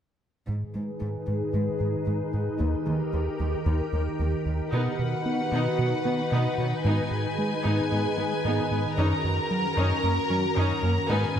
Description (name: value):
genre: cinematic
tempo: 113 BPM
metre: 4/4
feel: straight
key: G# minor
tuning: A4 = 442 Hz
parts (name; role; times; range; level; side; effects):
- soft additive organ-like pad; sustained chords; 0.7-11.4 s; D#3 to B4; -29 LUFS; left 1 dB; ensemble chorus, built-in reverb, low-pass filter
- round analog bass; riff; 0.5-11.4 s; D#2 to B3; -28 LUFS; right 1 dB; low-pass filter
- dark symphonic cello section; bass; 0.5-11.2 s; D#2 to B2; -34 LUFS; right 1 dB; none
- rich studio violin section; second line; 4.7-11.4 s; A#4 to A#5; -30 LUFS; left 1 dB; none
- warm symphonic viola section; accompaniment; 4.7-11.3 s; F#3 to D#4; -32 LUFS; equal; low-pass filter
room: moderate scoring stage reverb, RT60 1.9 s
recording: none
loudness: -24 LUFS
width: side -9 dB against mid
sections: 0.5-4.7 A section; 4.7-11.4 B section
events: filter sweep 0.5-4.7; build-up 4.7-11.4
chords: 0.5 G#m; 2.6 D#; 4.7 B; 6.8 G#m; 9.0 F#6